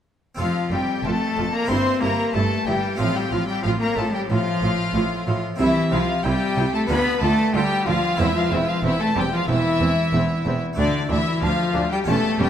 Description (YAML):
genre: classical, baroque-style concerto movement with solo episodes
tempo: 92 BPM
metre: 4/4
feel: straight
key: F major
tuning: A4 = 438 Hz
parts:
  - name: harpsichord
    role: accompaniment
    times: 0.3-12.5 s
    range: D2 to A4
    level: -29 LUFS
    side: equal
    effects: none
  - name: rich cello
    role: melody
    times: 0.4-12.5 s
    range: D3 to C4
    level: -24 LUFS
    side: left 1 dB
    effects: none
  - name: warm chamber violin section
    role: melody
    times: 0.4-12.5 s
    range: D5 to C6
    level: -26 LUFS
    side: left 2 dB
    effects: none
  - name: rich chamber violin section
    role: second line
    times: 0.4-12.5 s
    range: D4 to C5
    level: -27 LUFS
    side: left 1 dB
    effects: none
  - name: warm studio viola section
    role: accompaniment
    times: 0.4-12.5 s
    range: C4 to F4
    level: -31 LUFS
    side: right 2 dB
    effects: none
  - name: rich chamber cello section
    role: bass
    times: 0.4-12.5 s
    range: D2 to D3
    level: -28 LUFS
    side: right 3 dB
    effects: none
  - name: rich chamber double bass section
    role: bass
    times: 0.4-12.5 s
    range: E1 to D2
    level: -28 LUFS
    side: right 3 dB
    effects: none
room: moderate recital hall reverb, RT60 1.7 s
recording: none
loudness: -19 LUFS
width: side -9 dB against mid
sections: 0.4-12.5 A section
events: none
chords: 0.4 F; 1.7 Edim/G; 3.0 F/A; 5.6 C; 6.9 Bdim/D; 8.2 C/E; 10.8 D5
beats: | 0.39 1.04 1.69 2.34 | 3.00 3.65 4.29 4.95 | 5.59 6.25 6.89 7.54 | 8.19 8.84 9.49 10.14 | 10.78 11.43 12.07